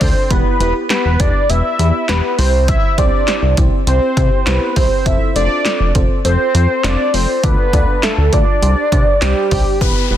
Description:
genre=synth-pop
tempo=101 BPM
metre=4/4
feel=straight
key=unclear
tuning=A4 = 440 Hz
part: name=fat analog lead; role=melody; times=0.0-10.2 s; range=G4 to E5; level=-17 LUFS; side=right 1 dB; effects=chorus, phaser, digital delay
part: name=FM electric piano with soft pad layer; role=accompaniment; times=0.0-10.2 s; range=B3 to E5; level=-22 LUFS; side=equal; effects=chorus, phaser
part: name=chorused synth bass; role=bass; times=0.0-10.2 s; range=E1 to C3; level=-15 LUFS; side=equal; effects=none
part: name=punchy analog drum machine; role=drums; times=0.0-9.9 s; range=handclaps, hi-hat, kick drum, snare drum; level=-16 LUFS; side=equal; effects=none
part: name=downlifter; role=sound effects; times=9.8-10.2 s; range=none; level=-20 LUFS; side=left 5 dB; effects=none
room=light reverb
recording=dense, heavily limited modern master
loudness=-12 LUFS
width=side -11 dB against mid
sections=0.0-9.8 A section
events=none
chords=0.3 Em; 2.4 C; 5.1 F; 7.4 Dm; 8.6 Csus2

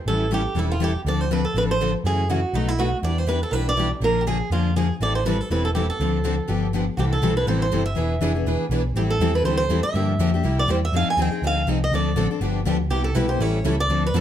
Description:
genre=acoustic string swing (jazz manouche)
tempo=243 BPM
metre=4/4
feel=swing 56% on 8ths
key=A minor, C major from 7.0 s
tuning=A4 = 437 Hz
part: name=picked swing-style acoustic guitar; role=melody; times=0.1-14.2 s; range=D#4 to Ab5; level=-25 LUFS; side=right 2 dB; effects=none
part: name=picked steel-string acoustic guitar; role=accompaniment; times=0.1-14.2 s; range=B2 to A4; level=-25 LUFS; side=left 7 dB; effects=none
part: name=picked steel-string acoustic guitar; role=accompaniment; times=0.1-14.2 s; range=B2 to B4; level=-29 LUFS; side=right 5 dB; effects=none
part: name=hollow-body short-scale picked electric bass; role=bass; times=0.1-14.2 s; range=E1 to G2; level=-24 LUFS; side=right 1 dB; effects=none
room=moderate club reverb, RT60 0.8 s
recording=none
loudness=-20 LUFS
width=side -10 dB against mid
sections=0.0-7.0 A section; 7.0-14.2 B section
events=none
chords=0.1 A7; 1.1 Dm7; 2.0 F#m7; 2.5 B7; 3.0 Em7; 4.0 Bb7; 5.0 Am7; 6.0 Dm7; 6.5 G7; 7.0 C6; 8.0 E7b9; 9.0 Am7; 9.9 Gm7; 10.4 C7; 10.9 Fm9; 11.9 Dm7; 12.4 G7; 12.9 Cmaj7; 13.4 A7

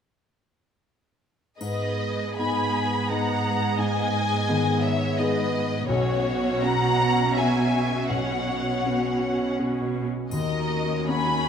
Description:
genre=cinematic, emotional film score for orchestra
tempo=76-87 BPM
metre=3/4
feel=rubato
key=G# minor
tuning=A4 = 440 Hz
part: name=warm symphonic violin section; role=melody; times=1.6-11.5 s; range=C#5 to B5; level=-27 LUFS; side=left 3 dB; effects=none
part: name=warm symphonic violin section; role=second line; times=1.6-11.5 s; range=F#4 to G#5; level=-31 LUFS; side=left 2 dB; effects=none
part: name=rich chamber viola section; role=accompaniment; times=1.6-11.5 s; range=B3 to G#4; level=-31 LUFS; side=right 4 dB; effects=none
part: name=warm baby grand piano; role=accompaniment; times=1.6-11.5 s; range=B1 to G#4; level=-28 LUFS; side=left 3 dB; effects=none
part: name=rich symphonic cello section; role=bass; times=1.6-11.5 s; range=D#2 to B2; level=-28 LUFS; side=right 4 dB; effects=none
part: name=triangle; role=percussion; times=1.6-3.1, 10.3-11.5 s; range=none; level=-48 LUFS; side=left 2 dB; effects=none
room=moderate scoring stage reverb, RT60 1.9 s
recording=none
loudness=-22 LUFS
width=side -7 dB against mid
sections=1.6-11.5 A section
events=none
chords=1.6 G#m; 5.9 Bsus2; 10.3 D#m7

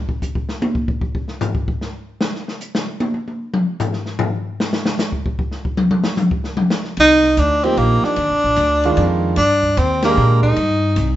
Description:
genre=modal jazz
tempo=151 BPM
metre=3/4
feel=swing 66% on 8ths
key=C minor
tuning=A4 = 440 Hz
part: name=open jazz drum kit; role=drums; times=0.1-11.1 s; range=hi-hat, kick drum, ride cymbal, snare drum, toms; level=-21 LUFS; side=left 1 dB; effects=none
part: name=breathy tenor saxophone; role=melody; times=7.0-11.2 s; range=Bb3 to Eb4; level=-15 LUFS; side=equal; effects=none
part: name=upright bass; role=bass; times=7.0-11.2 s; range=Bb1 to Bb2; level=-18 LUFS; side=equal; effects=none
part: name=clear concert grand piano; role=accompaniment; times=7.6-10.5 s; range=Eb3 to Bb4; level=-20 LUFS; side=right 4 dB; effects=none
room=moderate large studio reverb, RT60 1.0 s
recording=band playing live in one room, nothing above 7.8 kHz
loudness=-15 LUFS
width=side -13 dB against mid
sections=0.0-7.0 A section; 7.0-11.2 B section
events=drum solo 0.0-7.0; band accent 10.0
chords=0.0 N.C.; 7.0 Cm11

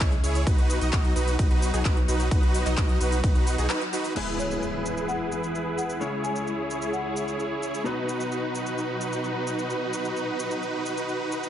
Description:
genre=EDM, festival progressive house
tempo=130 BPM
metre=4/4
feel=straight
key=B major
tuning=A4 = 443 Hz
part: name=marimba with soft mallets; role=melody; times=0.0-0.3, 4.4-7.4 s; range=C#5 to G#5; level=-35 LUFS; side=left 3 dB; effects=digital delay
part: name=warm studio string section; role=sustained chords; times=0.0-11.5 s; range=C#2 to B4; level=-34 LUFS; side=left 1 dB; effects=sidechain pumping
part: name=supersaw chords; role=riff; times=0.0-11.5 s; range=D#4 to D#5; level=-28 LUFS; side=right 2 dB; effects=sidechain pumping, low-pass filter, digital delay
part: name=saturated sub bass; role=bass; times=0.0-3.7 s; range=B1 to C#2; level=-27 LUFS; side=equal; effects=sidechain pumping
part: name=big-room dance drum kit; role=drums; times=0.0-11.5 s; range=crash cymbal, handclaps, hi-hat, ride cymbal, shaker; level=-34 LUFS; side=left 1 dB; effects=none
part: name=electronic kick drum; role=drums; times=0.0-3.3 s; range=none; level=-22 LUFS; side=equal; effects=none
part: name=bright concert grand piano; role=accompaniment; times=4.1-11.5 s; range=B2 to C#5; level=-35 LUFS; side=left 4 dB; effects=sidechain pumping, digital delay
part: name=impact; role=sound effects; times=4.2-6.0 s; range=none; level=-37 LUFS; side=equal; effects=none
room=light reverb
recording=nothing above 10.6 kHz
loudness=-24 LUFS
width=side -10 dB against mid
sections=0.0-4.2 A section; 4.2-11.5 B section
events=drop 0.0-4.2; break 3.7-4.2; band accent 3.7; impact 4.2-6.0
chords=0.5 B; 4.2 E; 6.0 C#m; 7.9 B

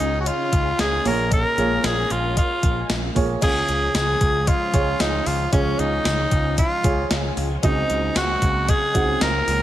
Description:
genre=1980s-style pop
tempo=114 BPM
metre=4/4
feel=straight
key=Db major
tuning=A4 = 440 Hz
part: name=raspy tenor saxophone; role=melody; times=0.0-9.6 s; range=Db4 to Bb4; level=-22 LUFS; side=equal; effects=none
part: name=dark concert grand piano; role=accompaniment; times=0.0-9.6 s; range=Bb2 to Gb5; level=-27 LUFS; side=right 4 dB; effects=none
part: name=phased string machine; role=sustained chords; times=0.0-9.6 s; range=Db3 to Ab4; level=-31 LUFS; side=left 1 dB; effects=ensemble chorus, phaser
part: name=modern bright picked electric bass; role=bass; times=0.0-9.6 s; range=Bb1 to Db2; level=-25 LUFS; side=equal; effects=none
part: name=gated 80s digital drum machine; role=drums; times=0.0-9.6 s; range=crash cymbal, hi-hat, kick drum, snare drum, tambourine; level=-22 LUFS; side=equal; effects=gated reverb, gated reverb snare
part: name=cowbell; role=percussion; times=0.3-9.3 s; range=none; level=-36 LUFS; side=left 8 dB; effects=none
room=light reverb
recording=none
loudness=-18 LUFS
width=side -13 dB against mid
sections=0.0-3.4 A section; 3.4-9.6 B section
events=none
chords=0.0 Dbadd9; 1.1 Bbm7; 3.4 Db; 7.6 Ab7/Db

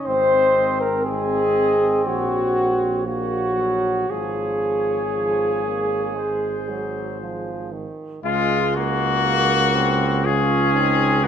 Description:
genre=classical, brass quintet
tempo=59 BPM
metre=4/4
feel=straight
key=Db major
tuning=A4 = 441 Hz
part: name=mellow trumpet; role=melody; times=0.0-11.3 s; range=F4 to Eb5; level=-24 LUFS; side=left 7 dB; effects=none
part: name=clear trombone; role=accompaniment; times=0.0-11.3 s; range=Eb3 to Db4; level=-28 LUFS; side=right 2 dB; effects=none
part: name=warm flugelhorn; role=second line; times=0.1-11.3 s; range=Ab3 to C5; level=-26 LUFS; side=right 7 dB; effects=none
part: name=mellow French horn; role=accompaniment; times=0.1-11.3 s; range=Db4 to C5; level=-22 LUFS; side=left 2 dB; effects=none
part: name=warm tuba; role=bass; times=0.1-11.3 s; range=Ab1 to Db2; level=-26 LUFS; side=right 4 dB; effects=none
room=wet recital hall reverb, RT60 1.6 s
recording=none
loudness=-18 LUFS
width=side -8 dB against mid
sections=0.0-8.2 A section; 8.2-11.3 B section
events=none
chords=0.1 Ab; 2.1 Gb/Bb; 4.1 Db/Ab; 6.2 Ab; 8.2 Db5

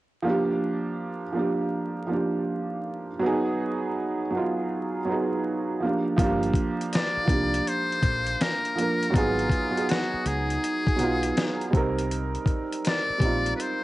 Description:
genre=lo-fi hip hop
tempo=81 BPM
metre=4/4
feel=swing 66% on 16ths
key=unclear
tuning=A4 = 440 Hz
part: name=felt-muted upright piano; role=accompaniment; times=0.2-13.8 s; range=F3 to Bb4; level=-26 LUFS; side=right 2 dB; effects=cassette tape
part: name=deep dub fingered electric bass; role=bass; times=6.2-13.5 s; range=G1 to C#2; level=-30 LUFS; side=left 1 dB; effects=none
part: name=dusty soul sampler-style drum kit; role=drums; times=6.2-13.8 s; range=hi-hat, kick drum, snare drum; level=-26 LUFS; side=left 1 dB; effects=cassette tape
part: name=trumpet with metal mute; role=melody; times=6.9-13.8 s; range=F4 to D5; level=-28 LUFS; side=left 2 dB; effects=none
room=light reverb, small room ambience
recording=home recording on cassette, vinyl crackle, nothing above 10.9 kHz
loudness=-23 LUFS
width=side -17 dB against mid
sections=0.3-6.2 A section; 6.2-13.8 B section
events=none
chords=0.3 Gm7; 3.2 Abm7; 5.8 Gm7; 9.1 Abm7; 11.7 Cm7

